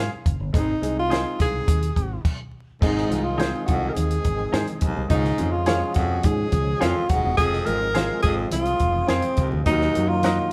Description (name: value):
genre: uptempo 1960s-style soul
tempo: 105 BPM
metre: 4/4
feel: straight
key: Ab mixolydian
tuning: A4 = 441 Hz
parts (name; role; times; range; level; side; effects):
- breathy tenor saxophone; melody; 0.0-10.5 s; C4 to Bb4; -27 LUFS; equal; none
- semi-hollow electric guitar; stabs; 0.0-10.4 s; Eb4 to F5; -33 LUFS; equal; none
- fingered electric bass; bass; 0.0-10.4 s; Eb1 to Ab2; -29 LUFS; equal; none
- compact cocktail drum kit; drums; 0.3-10.4 s; crash cymbal, hi-hat, kick drum, snare drum; -27 LUFS; equal; none
- warm grand piano; accompaniment; 0.5-10.5 s; Gb3 to Ab4; -33 LUFS; equal; none
- bright tonewheel organ; sustained chords; 2.8-10.5 s; Eb3 to Ab4; -36 LUFS; equal; none
- bright baritone saxophone; riff; 2.8-10.1 s; Eb2 to Ab2; -33 LUFS; equal; none
- congas; percussion; 3.1-10.4 s; none; -39 LUFS; equal; none
room: moderate large studio reverb, RT60 1.4 s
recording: band playing live in one room, vinyl crackle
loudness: -22 LUFS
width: mono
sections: 0.0-2.8 A section; 2.8-10.5 A section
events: stop 2.2-2.8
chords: 0.0 Fm; 0.5 Ab; 5.1 Db; 7.4 Fm; 9.7 Ebm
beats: | 0.54 1.11 1.68 2.25 | 2.82 3.39 3.96 4.53 | 5.10 5.67 6.24 6.81 | 7.38 7.96 8.53 9.10 | 9.67 10.24